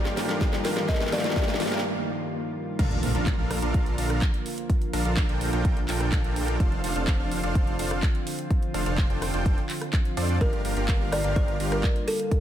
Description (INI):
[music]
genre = EDM, festival progressive house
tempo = 126 BPM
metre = 4/4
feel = straight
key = Bb major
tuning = A4 = 443 Hz
[part]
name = kalimba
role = melody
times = 0.0-1.8, 10.4-12.4 s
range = A4 to Eb5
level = -31 LUFS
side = left 1 dB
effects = tape echo
[part]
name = dark baby grand piano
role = accompaniment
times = 0.0-2.8 s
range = G2 to A4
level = -33 LUFS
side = left 4 dB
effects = sidechain pumping, tape echo
[part]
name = lush unison pad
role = sustained chords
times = 0.0-12.4 s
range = D3 to F4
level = -33 LUFS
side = right 1 dB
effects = chorus, sidechain pumping
[part]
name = dense compressed supersaw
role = riff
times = 0.0-11.9 s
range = D4 to G5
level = -32 LUFS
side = right 1 dB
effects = sidechain pumping, tape echo
[part]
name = wide detuned saw bass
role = bass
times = 0.0-11.8 s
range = Eb1 to F2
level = -30 LUFS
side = equal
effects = chorus, sidechain pumping, high-pass filter
[part]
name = riser and impact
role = sound effects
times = 0.0-4.7 s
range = none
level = -33 LUFS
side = right 1 dB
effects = none
[part]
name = house drum kit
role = drums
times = 0.1-12.4 s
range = crash cymbal, handclaps, hi-hat, rim click, snare drum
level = -34 LUFS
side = right 1 dB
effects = high-pass filter on snare, studio reverb, high-pass filter on hats, high-pass filter on cymbals
[part]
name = electronic kick drum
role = drums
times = 0.4-12.4 s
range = none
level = -24 LUFS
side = equal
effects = studio reverb
[sound]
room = light reverb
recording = none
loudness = -23 LUFS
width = side -11 dB against mid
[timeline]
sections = 0.0-2.8 A section; 2.8-12.4 B section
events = build-up 0.0-2.8; drum fill 0.0-1.8; riser 0.0-1.8; break 1.8-2.8; drop 2.8-12.4; impact 2.8-4.7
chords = 0.0 Ebadd9; 2.8 Bbmaj7; 6.6 F6; 10.4 Gm7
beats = 0.41 | 0.89 1.36 1.84 2.31 | 2.79 3.27 3.74 4.22 | 4.70 5.17 5.65 6.12 | 6.60 7.08 7.55 8.03 | 8.51 8.98 9.46 9.93 | 10.41 10.89 11.36 11.84 | 12.31